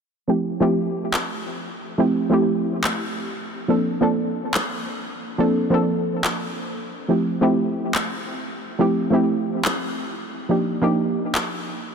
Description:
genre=future bass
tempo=141 BPM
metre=4/4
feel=swing 53% on 16ths, half-time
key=F major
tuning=A4 = 439 Hz
part: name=soft round pluck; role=accompaniment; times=0.3-11.0 s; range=F3 to A4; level=-21 LUFS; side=right 1 dB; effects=chorus, tape echo
part: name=electronic handclaps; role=drums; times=1.1-11.4 s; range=none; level=-27 LUFS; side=left 1 dB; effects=small room reverb
room=moderate huge ambient reverb, RT60 4.2 s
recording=dense, heavily limited modern master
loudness=-20 LUFS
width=side -6 dB against mid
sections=0.3-11.9 A section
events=none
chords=0.3 Fmaj9; 3.5 Bbmaj9; 6.9 Fmaj9; 10.5 Ebmaj9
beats=| 0.29 0.71 1.14 1.56 | 1.99 2.41 2.84 3.27 | 3.69 4.12 4.54 4.97 | 5.39 5.82 6.24 6.67 | 7.09 7.52 7.95 8.37 | 8.80 9.22 9.65 10.07 | 10.50 10.92 11.35

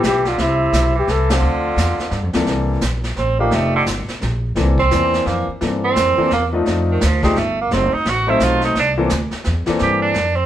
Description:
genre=jazz, small-group swing and bop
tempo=172 BPM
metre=3/4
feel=swing 63% on 8ths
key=C mixolydian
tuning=A4 = 444 Hz
part: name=breathy flugelhorn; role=melody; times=0.0-2.4 s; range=E4 to A4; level=-20 LUFS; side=left 2 dB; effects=none
part: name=bright tenor saxophone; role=second line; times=0.0-10.5 s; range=C3 to G4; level=-19 LUFS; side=right 4 dB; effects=none
part: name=upright bass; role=bass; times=0.0-10.5 s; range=F1 to G2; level=-20 LUFS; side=equal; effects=none
part: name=vintage brush drum kit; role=drums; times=0.0-10.5 s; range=brushed snare drum, hi-hat, kick drum, ride cymbal, snare drum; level=-25 LUFS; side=equal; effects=none
part: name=clear baby grand piano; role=accompaniment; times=1.3-10.1 s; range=C2 to C5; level=-20 LUFS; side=left 3 dB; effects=none
room=moderate studio reverb, RT60 0.8 s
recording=band playing live in one room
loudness=-15 LUFS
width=side -11 dB against mid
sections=0.0-2.5 A section; 2.5-10.5 B section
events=band accent 1.3; tenor saxophone solo 2.5-10.5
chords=0.4 C69; 1.4 Dm7; 2.1 Gsus2; 2.5 C13; 3.5 F13; 4.6 C13; 6.7 F13; 7.7 F#dim7; 8.8 C13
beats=0.03 | 0.38 0.73 1.08 | 1.43 1.78 2.13 | 2.48 2.82 3.17 | 3.52 3.87 4.22 | 4.57 4.92 5.27 | 5.62 5.97 6.32 | 6.67 7.01 7.36 | 7.71 8.06 8.41 | 8.76 9.11 9.45 | 9.80 10.15

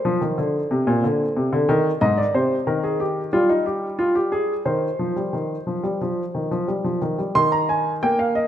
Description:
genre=classical, baroque-style two-part invention for grand piano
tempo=90 BPM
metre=4/4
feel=straight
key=C minor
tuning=A4 = 440 Hz
part: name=warm baby grand piano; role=solo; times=0.0-8.5 s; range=Ab2 to C6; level=-19 LUFS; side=equal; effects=none
room=wet recital hall reverb, RT60 1.8 s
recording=minimal, uncompressed stereo recording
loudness=-19 LUFS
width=side -10 dB against mid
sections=0.0-7.4 A section; 7.4-8.5 B section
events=none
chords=0.0 N.C.; 0.7 Cm; 2.0 Ab; 3.3 Fmadd9/G; 4.7 Cm/Eb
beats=0.05 0.71 1.36 | 2.02 2.67 3.33 3.99 | 4.66 5.34 6.01 6.68 | 7.36 8.03

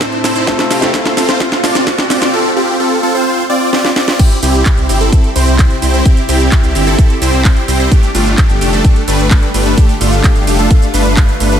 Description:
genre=EDM, festival progressive house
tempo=129 BPM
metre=4/4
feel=straight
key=C major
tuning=A4 = 441 Hz
part: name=warm grand piano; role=accompaniment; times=0.0-4.2 s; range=A2 to A4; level=-22 LUFS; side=left 3 dB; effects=sidechain pumping, digital delay
part: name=lush unison pad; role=sustained chords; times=0.0-11.6 s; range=C3 to A4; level=-21 LUFS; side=left 1 dB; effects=chorus, sidechain pumping
part: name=supersaw chords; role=riff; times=0.0-11.6 s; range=A3 to D5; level=-14 LUFS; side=right 1 dB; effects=sidechain pumping, digital delay
part: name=electronic kick drum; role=drums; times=0.0-11.3 s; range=none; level=-9 LUFS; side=equal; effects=high-pass filter on kick, high-pass filter on room
part: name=house drum kit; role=drums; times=0.0-11.6 s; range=crash cymbal, handclaps, hi-hat, ride cymbal, shaker, snare drum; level=-18 LUFS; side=right 1 dB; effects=none
part: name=riser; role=sound effects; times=0.0-2.3 s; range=none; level=-21 LUFS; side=right 2 dB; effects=none
part: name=wide detuned saw bass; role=bass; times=4.4-11.6 s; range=F1 to C2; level=-14 LUFS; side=equal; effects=chorus, sidechain pumping
room=light reverb, digital ambience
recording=none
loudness=-9 LUFS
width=side -9 dB against mid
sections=0.0-4.2 A section; 4.2-11.6 B section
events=build-up 0.0-4.2; drum fill 0.0-2.3, 3.7-4.2; riser 0.0-2.3; drop 4.2-11.6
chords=0.5 F; 4.2 C; 7.9 Gsus2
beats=0.01 | 0.47 0.94 1.40 1.87 | 2.33 2.80 3.26 3.73 | 4.19 4.66 5.12 5.59 | 6.05 6.52 6.99 7.45 | 7.92 8.38 8.85 9.31 | 9.78 10.24 10.71 11.17

